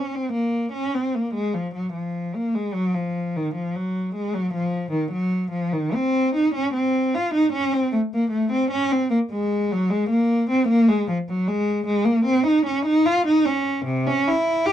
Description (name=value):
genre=classical, baroque-style suite movement for unaccompanied cello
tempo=75 BPM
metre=4/4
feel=rubato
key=Bb minor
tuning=A4 = 440 Hz
part: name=warm cello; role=solo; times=0.0-14.7 s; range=C3 to G4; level=-20 LUFS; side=equal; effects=none
room=moderate studio ambience, RT60 0.4 s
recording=dark, warm production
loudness=-20 LUFS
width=side -10 dB against mid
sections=0.0-14.7 A section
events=none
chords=none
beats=0.37 1.17 1.97 | 2.77 3.58 4.36 5.15 | 5.95 6.76 7.54 8.33 | 9.13 9.92 10.71 11.51 | 12.30 13.10 13.89 14.69